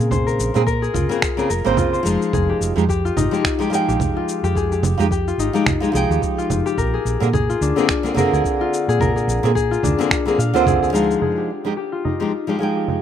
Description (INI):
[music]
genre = sunset chillout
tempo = 108 BPM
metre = 4/4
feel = swing 57% on 16ths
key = F minor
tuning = A4 = 440 Hz
[part]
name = nylon-string guitar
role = accompaniment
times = 0.0-13.0 s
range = Db3 to G5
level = -21 LUFS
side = moving between left 5 dB and right 7 dB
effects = auto-pan, ping-pong delay
[part]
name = concert harp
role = arpeggios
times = 0.0-13.0 s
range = D4 to F5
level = -22 LUFS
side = left 6 dB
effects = low-pass filter, ping-pong delay
[part]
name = hollow-body short-scale fingered electric bass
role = bass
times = 0.0-11.2 s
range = F1 to Bb2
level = -21 LUFS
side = right 1 dB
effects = none
[part]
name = electronic shaker, congas and finger snaps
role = drums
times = 0.0-13.0 s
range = none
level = -23 LUFS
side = right 3 dB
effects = low-pass filter on perc, low-pass filter on snare
[part]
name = electronic kick drum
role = drums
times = 0.1-10.8 s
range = none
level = -26 LUFS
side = right 1 dB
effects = none
[sound]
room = small room ambience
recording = rough home demo mix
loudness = -17 LUFS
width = side -9 dB against mid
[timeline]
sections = 0.0-11.2 A section; 11.2-13.0 B section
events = none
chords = 0.0 Bbm9; 2.1 Fm9; 6.8 Bb9; 11.2 Fm9